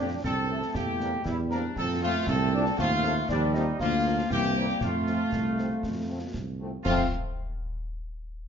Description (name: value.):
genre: military-style march for wind band.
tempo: 118 BPM.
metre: 2/4.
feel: straight.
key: F major.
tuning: A4 = 440 Hz.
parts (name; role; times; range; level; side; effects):
dark trumpet section; melody; 0.0-7.1 s; D4 to Bb4; -33 LUFS; equal; none.
mellow large flute ensemble; second line; 0.0-7.1 s; D5 to Bb5; -34 LUFS; left 2 dB; none.
warm woodwind section; second line; 0.0-7.1 s; F3 to F5; -32 LUFS; left 2 dB; none.
mellow French horn section; accompaniment; 0.0-7.1 s; E3 to F4; -37 LUFS; left 4 dB; none.
warm trombone section; sustained chords; 0.0-7.1 s; E3 to D4; -36 LUFS; right 2 dB; none.
dark tuba; bass; 0.0-7.1 s; C2 to F2; -30 LUFS; right 2 dB; none.
concert snare drum, concert bass drum and clash cymbals; drums; 0.2-7.1 s; none; -36 LUFS; left 1 dB; none.
room: wet large studio reverb, RT60 1.2 s.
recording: nothing above 7.4 kHz.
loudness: -25 LUFS.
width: side -7 dB against mid.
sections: 0.0-6.8 A section; 6.8-7.9 B section.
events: none.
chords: 0.0 F; 0.7 C7/E; 1.8 F; 2.8 F7/Eb; 3.8 Bb/D; 4.3 C7; 4.8 F.